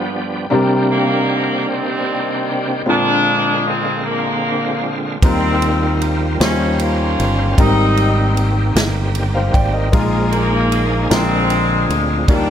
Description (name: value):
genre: slow gospel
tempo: 51 BPM (dotted quarters)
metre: 6/8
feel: straight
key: unclear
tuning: A4 = 439 Hz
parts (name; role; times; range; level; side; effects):
- clear horn section; melody; 0.0-12.5 s; D3 to F4; -19 LUFS; left 1 dB; none
- warm baby grand piano; accompaniment; 0.0-12.5 s; G2 to G5; -20 LUFS; left 2 dB; none
- bright tonewheel organ; sustained chords; 0.0-12.5 s; C3 to D5; -22 LUFS; right 3 dB; slow rotary speaker, chorus vibrato
- fingered electric bass; bass; 5.2-12.5 s; G1 to Eb2; -18 LUFS; equal; none
- natural country drum kit; drums; 5.2-12.5 s; kick drum, ride cymbal, snare drum; -19 LUFS; equal; none
room: light reverb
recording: none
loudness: -14 LUFS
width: side -9 dB against mid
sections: 0.0-12.5 A section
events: none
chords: 0.0 G7; 0.5 Cm9; 2.9 Bb9; 5.2 Eb69; 6.4 Eb13; 7.6 Abmaj9; 9.9 Bb7sus4; 11.1 Bb9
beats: | 0.51 1.69 | 2.87 4.05 | 5.22 6.40 | 7.58 8.76 | 9.93 11.11 | 12.28